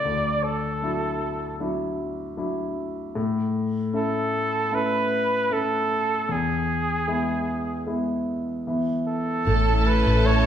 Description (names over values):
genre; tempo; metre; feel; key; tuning
pop ballad; 76 BPM; 4/4; straight; A major; A4 = 440 Hz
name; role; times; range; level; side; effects
clear flugelhorn; melody; 0.0-10.5 s; G#4 to D5; -25 LUFS; right 2 dB; none
warm grand piano; accompaniment; 0.0-10.5 s; D2 to C#5; -26 LUFS; left 2 dB; none
warm studio violin section; second line; 9.5-10.5 s; A4 to A5; -27 LUFS; right 2 dB; none
lush unison pad; sustained chords; 9.5-10.5 s; A3 to E4; -26 LUFS; left 1 dB; chorus
fingerpicked steel-string acoustic guitar; arpeggios; 9.5-10.5 s; A2 to A4; -28 LUFS; left 3 dB; none
vintage muted fingered electric bass; bass; 9.5-10.5 s; A1; -20 LUFS; right 1 dB; none
room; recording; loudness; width
wet large studio reverb, RT60 1.3 s; band playing live in one room; -22 LUFS; side -9 dB against mid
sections
0.0-9.5 A section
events
none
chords
0.0 Dadd9; 3.2 A; 6.3 E; 9.5 A